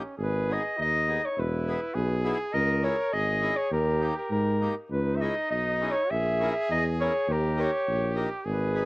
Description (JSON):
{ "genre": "alpine folk, alpine dance band", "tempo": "102 BPM", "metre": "2/4", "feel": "rubato", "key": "G# harmonic minor", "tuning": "A4 = 440 Hz", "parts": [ { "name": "clear trumpet", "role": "second line", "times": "0.0-8.9 s", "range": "C#4 to A#4", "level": "-34 LUFS", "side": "right 1 dB", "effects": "cassette tape" }, { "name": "accordion", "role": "accompaniment", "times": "0.0-8.9 s", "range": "A#3 to B4", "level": "-35 LUFS", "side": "left 1 dB", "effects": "cassette tape" }, { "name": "dark soprano saxophone", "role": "melody", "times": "0.2-8.9 s", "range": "A#4 to E5", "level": "-28 LUFS", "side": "equal", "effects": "cassette tape" }, { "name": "warm tuba", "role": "bass", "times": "0.2-8.8 s", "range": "E1 to G#2", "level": "-28 LUFS", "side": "equal", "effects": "none" } ], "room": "light reverb, studio reverb", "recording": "home recording on cassette", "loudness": "-24 LUFS", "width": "side -23 dB against mid", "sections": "0.2-8.9 A section", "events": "none", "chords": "0.2 G#m; 1.4 E; 2.5 C#m; 3.7 D#; 4.9 C#madd9; 6.1 A#dim; 7.3 D#7" }